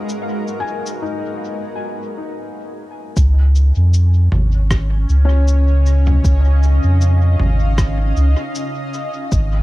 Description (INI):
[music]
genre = ambient dub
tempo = 78 BPM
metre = 4/4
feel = swing 55% on 16ths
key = unclear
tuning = A4 = 440 Hz
[part]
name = granular cloud pad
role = sustained chords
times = 0.0-9.6 s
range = G#3 to E#5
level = -26 LUFS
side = equal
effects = built-in reverb
[part]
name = felt-muted upright piano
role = arpeggios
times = 0.0-9.3 s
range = C#4 to G#5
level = -29 LUFS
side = left 4 dB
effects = tape echo
[part]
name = wind-like tuned noise texture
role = texture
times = 0.0-1.6 s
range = D#4 to D#5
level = -35 LUFS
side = left 3 dB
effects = built-in reverb
[part]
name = lo-fi sampler-style drum kit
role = drums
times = 0.1-9.5 s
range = cabasa, rim click, toms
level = -25 LUFS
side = equal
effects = dub echo
[part]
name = soft dub sub bass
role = bass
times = 3.2-9.6 s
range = G#1 to E#2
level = -12 LUFS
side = equal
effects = tube saturation
[part]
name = electronic kick drum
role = drums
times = 3.2-9.5 s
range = none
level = -18 LUFS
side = equal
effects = overdrive
[sound]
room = little or no reverb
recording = echo-heavy mix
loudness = -13 LUFS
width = side -17 dB against mid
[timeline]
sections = 0.0-3.2 A section; 3.2-9.6 B section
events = filter sweep on felt piano 0.0-3.2; break 1.6-3.2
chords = 0.0 G#m7; 3.2 C#